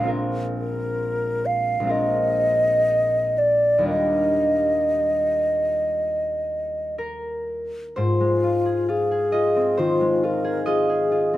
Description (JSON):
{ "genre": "classical, impressionist duo for flute and harp", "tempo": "57-69 BPM", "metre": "4/4", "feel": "rubato", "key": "Eb major, Ab major from 8.0 s", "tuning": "A4 = 440 Hz", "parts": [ { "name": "mellow hollow concert flute", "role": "melody", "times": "0.0-11.4 s", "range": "F4 to F5", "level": "-20 LUFS", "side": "equal", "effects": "none" }, { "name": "concert harp", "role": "accompaniment", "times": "0.0-11.4 s", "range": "Bb1 to Eb5", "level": "-25 LUFS", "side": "equal", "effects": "none" } ], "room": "moderate studio reverb, RT60 0.5 s", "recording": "none", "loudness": "-19 LUFS", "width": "side -14 dB against mid", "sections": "0.0-8.0 A section; 8.0-11.4 B section", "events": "none", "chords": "0.1 Bb9sus4; 3.9 Ebmaj9; 8.0 Ab6", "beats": "| 0.10 1.00 1.92 2.88 | 3.90 4.95 6.00 6.99 | 7.98 8.90 9.79 10.67" }